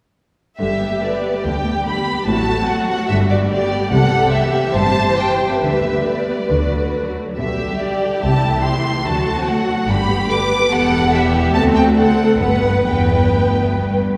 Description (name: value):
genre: quick classical-period movement for symphony orchestra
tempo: 131-147 BPM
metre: 4/4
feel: rubato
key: G major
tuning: A4 = 441 Hz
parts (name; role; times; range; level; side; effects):
- rich studio violin section; melody; 0.6-14.0 s; D5 to D6; -23 LUFS; equal; none
- rich studio violin section; second line; 0.6-14.0 s; F#4 to C5; -25 LUFS; equal; none
- rich studio viola section; accompaniment; 0.6-14.0 s; C3 to B4; -23 LUFS; equal; none
- rich studio cello section; bass; 0.6-14.2 s; D2 to D3; -24 LUFS; equal; none
- rich studio double bass section; bass; 0.6-14.0 s; E1 to D2; -24 LUFS; equal; none
room: wet concert hall reverb, RT60 2.1 s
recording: heard from further back in the room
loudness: -17 LUFS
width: mono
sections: 0.6-14.2 A section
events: none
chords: 0.6 G; 2.3 F#dim/A; 3.1 G; 3.9 C; 5.6 G/D; 6.5 D; 7.4 G/B; 8.2 Am/C; 9.1 D7; 9.9 G; 10.7 Em; 11.5 D7; 12.4 G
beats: | 0.60 1.03 1.45 1.86 | 2.27 2.68 3.09 3.50 | 3.91 4.33 4.75 5.17 | 5.61 6.06 6.50 6.94 | 7.38 7.81 8.23 8.65 | 9.06 9.47 9.88 10.30 | 10.71 11.12 11.54 11.97 | 12.42 12.87 13.33 13.78